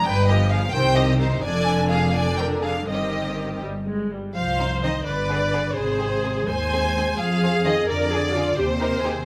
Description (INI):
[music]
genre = quick classical-period movement for string orchestra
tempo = 80-89 BPM (dotted quarters)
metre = 6/8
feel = rubato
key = C minor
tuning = A4 = 441 Hz
[part]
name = rich chamber violin section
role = melody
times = 0.0-9.2 s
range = C5 to Ab5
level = -28 LUFS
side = equal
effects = none
[part]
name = rich chamber viola section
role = accompaniment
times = 0.0-9.2 s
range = D3 to C5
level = -29 LUFS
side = equal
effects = none
[part]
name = clear chamber violin section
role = second line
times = 0.1-9.1 s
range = B3 to D5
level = -31 LUFS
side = equal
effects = none
[part]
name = dark chamber cello section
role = bass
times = 0.1-9.2 s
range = F2 to Ab3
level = -29 LUFS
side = equal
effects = none
[part]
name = rich studio double bass section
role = bass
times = 0.1-9.2 s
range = F1 to F2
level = -29 LUFS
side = equal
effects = none
[sound]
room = moderate scoring stage reverb, RT60 1.7 s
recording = close, detailed microphones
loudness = -22 LUFS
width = mono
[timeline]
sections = 0.0-4.4 A section; 4.4-9.2 B section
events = none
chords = 0.1 G7; 0.7 Cm; 1.4 Ddim/F; 2.9 Cm/G; 3.6 N.C.; 4.4 Cm; 5.1 G; 5.8 Ab; 7.2 Fm; 7.9 Ddim/F; 8.6 Cm/Eb